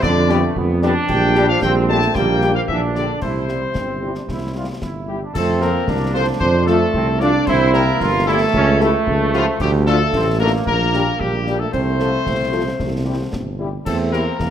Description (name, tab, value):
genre	military-style march for wind band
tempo	113 BPM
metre	2/4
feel	straight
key	F major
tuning	A4 = 440 Hz
part	mellow trumpet section	melody	0.0-14.5 s	F4 to A5	-23 LUFS	left 4 dB	none
part	mellow euphonium	second line	0.0-14.5 s	C3 to D4	-22 LUFS	right 2 dB	none
part	clear trombone section	sustained chords	0.0-14.5 s	A3 to F4	-24 LUFS	right 2 dB	none
part	mellow tuba	bass	0.0-14.5 s	G1 to F2	-20 LUFS	right 2 dB	none
part	concert snare drum, concert bass drum and clash cymbals	drums	0.0-14.5 s	none	-28 LUFS	left 1 dB	none
part	warm French horn section	accompaniment	0.3-14.2 s	F3 to A4	-25 LUFS	left 5 dB	none
room	moderate scoring stage reverb, RT60 1.6 s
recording	none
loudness	-15 LUFS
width	side -9 dB against mid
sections	0.0-5.3 A section; 5.3-14.5 B section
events	none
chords	0.0 G7/F; 1.1 Gm/Bb; 3.2 C; 5.3 F; 7.5 C; 8.5 A7/C#; 9.6 Dm; 10.7 Gm/Bb; 11.7 F/C; 12.8 C; 13.9 Edim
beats	| 0.03 0.56 | 1.10 1.63 | 2.16 2.69 | 3.22 3.75 | 4.29 4.82 | 5.35 5.88 | 6.41 6.95 | 7.48 8.01 | 8.54 9.07 | 9.61 10.14 | 10.67 11.20 | 11.73 12.27 | 12.80 13.33 | 13.86 14.39